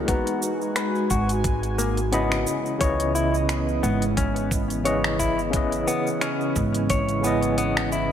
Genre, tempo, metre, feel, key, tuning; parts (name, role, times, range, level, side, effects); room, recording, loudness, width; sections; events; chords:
sunset chillout; 88 BPM; 4/4; swing 56% on 16ths; C# dorian; A4 = 440 Hz
overdriven tine electric piano; accompaniment; 0.0-8.1 s; C#3 to B5; -26 LUFS; moving between left 3 dB and right 6 dB; fast tremolo, auto-pan, tape echo
airy breathy pad; sustained chords; 0.0-8.1 s; C#3 to G#5; -29 LUFS; equal; chorus
upright bass; bass; 0.0-8.1 s; G#1 to C#2; -27 LUFS; equal
clean electric guitar; arpeggios; 0.1-8.1 s; A#3 to C#5; -28 LUFS; left 3 dB; low-pass filter, tape echo
deep house drum kit; drums; 0.1-8.1 s; cabasa, finger snaps, hi-hat; -29 LUFS; right 1 dB
electronic kick drum; drums; 0.1-7.1 s; -26 LUFS; equal
moderate concert hall reverb, RT60 2.0 s; -21 LUFS; side -9 dB against mid
0.0-8.1 A section
filter sweep on clean electric guitar 0.0-8.1
0.1 G#m9; 2.5 C#m9